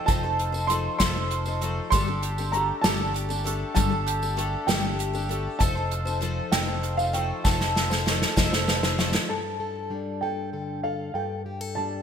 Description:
indie folk with a building arrangement; 65 BPM (dotted quarters); 6/8; straight; A4 = 439 Hz
dark upright piano; melody; 0.0-12.0 s; F5 to C6; -29 LUFS; right 2 dB; analog chorus
picked twelve-string acoustic guitar; accompaniment; 0.0-9.3 s; G2 to C5; -31 LUFS; left 8 dB
bowl-back mandolin; arpeggios; 0.0-9.3 s; A3 to A4; -34 LUFS; right 5 dB
fingered electric bass; bass; 0.1-9.2 s; F1 to G1; -29 LUFS; equal
unplugged drum kit; drums; 0.1-9.3 s; hi-hat, kick drum, snare drum; -25 LUFS; right 1 dB; gated reverb
tambourine; percussion; 0.1-9.1 s; -40 LUFS; right 7 dB
fingerpicked plugged-in steel-string acoustic guitar; accompaniment; 9.3-12.0 s; G2 to A4; -31 LUFS; left 4 dB
moderate lush hall reverb, RT60 2.4 s; bright 1980s-style digital production; -23 LUFS; side -8 dB against mid
0.0-9.3 A section; 9.3-12.0 B section
drum fill 7.4-9.3
0.0 F7; 1.9 Gsus2; 5.6 F7; 9.3 Gsus2

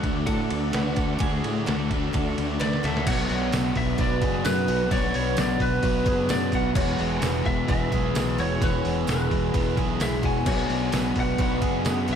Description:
rock, shoegaze and dream pop; 130 BPM; 4/4; straight; A4 = 441 Hz
lightly driven lead guitar; melody; 0.0-12.2 s; B4 to G#5; -31 LUFS; right 1 dB; slapback echo
glassy FM pad; sustained chords; 0.0-12.2 s; A3 to E6; -35 LUFS; equal; ensemble chorus, built-in reverb
picked twelve-string acoustic guitar; arpeggios; 0.0-12.2 s; F#4 to C#5; -33 LUFS; right 2 dB; analog chorus, slapback echo
raw garage guitar; riff; 0.0-12.2 s; E2 to G#4; -30 LUFS; right 9 dB; overdrive, reverse reverb
thick fuzz guitar; riff; 0.0-12.2 s; E2 to D4; -29 LUFS; left 11 dB; distortion, analog chorus
growling fingered electric bass; bass; 0.0-12.2 s; E1 to A2; -29 LUFS; equal; overdrive
detuned 8-bit digital drum machine; drums; 0.0-12.2 s; crash cymbal, hi-hat, kick drum, ride cymbal, snare drum; -28 LUFS; equal
tambourine; percussion; 3.5-12.0 s; -40 LUFS; right 14 dB
light reverb, digital ambience; -22 LUFS; side -8 dB against mid
0.0-3.1 A section; 3.1-12.2 B section
drum fill 2.6-3.1
0.0 D; 3.1 Bm; 6.8 Eadd9; 10.5 Bm

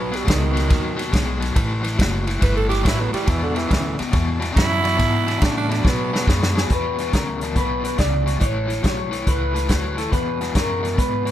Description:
electric blues shuffle; 140 BPM; 4/4; swing 66% on 8ths; E mixolydian; A4 = 440 Hz
growling tenor saxophone; second line; 0.0-6.3 s; D3 to B4; -25 LUFS; right 5 dB; tape echo
overdriven electric guitar; riff; 0.0-11.3 s; E2 to G#3; -25 LUFS; left 4 dB; tremolo
upright bass; bass; 0.0-11.3 s; F#1 to B2; -24 LUFS; equal
vintage drum kit; drums; 0.1-11.3 s; hi-hat, kick drum, ride cymbal, snare drum; -22 LUFS; equal
electric guitar through a small old amp; melody; 6.6-11.3 s; G#4 to D5; -25 LUFS; left 1 dB; wide subtle chorus
light reverb; -18 LUFS; side -12 dB against mid
0.0-6.7 A section; 6.7-11.3 B section
tenor saxophone solo 0.0-6.7; drum fill 5.8-6.7
0.0 Badd9; 1.6 A5; 3.3 E9; 5.8 B5; 6.7 E5; 8.4 Aadd9; 10.1 Eadd9

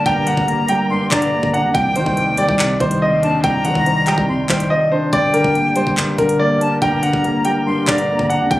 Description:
hip hop, drill; 142 BPM; 4/4; half-time; G minor; A4 = 440 Hz
bright silver concert flute; second line; 0.0-8.6 s; G5 to C6; -21 LUFS; left 2 dB; ping-pong delay
felt-muted upright piano; accompaniment; 0.0-8.6 s; G2 to D4; -20 LUFS; equal; low-pass filter
sweeping resonant pad; sustained chords; 0.0-8.6 s; C3 to D5; -26 LUFS; equal; chorus
growling 808-style bass; bass; 0.0-8.6 s; F#1 to G3; -24 LUFS; equal
clear concert grand piano; melody; 0.1-8.6 s; Bb4 to G5; -18 LUFS; equal; low-pass filter
drill drum kit; drums; 0.1-8.6 s; handclaps, hi-hat, kick drum; -23 LUFS; equal
studio reverb; recorded on a phone in the room, club reverb, compression; -14 LUFS; side -16 dB against mid
0.0-8.6 A section
silent gap 4.7-5.1
0.0 Gm; 1.7 Cmadd9; 5.1 Gm

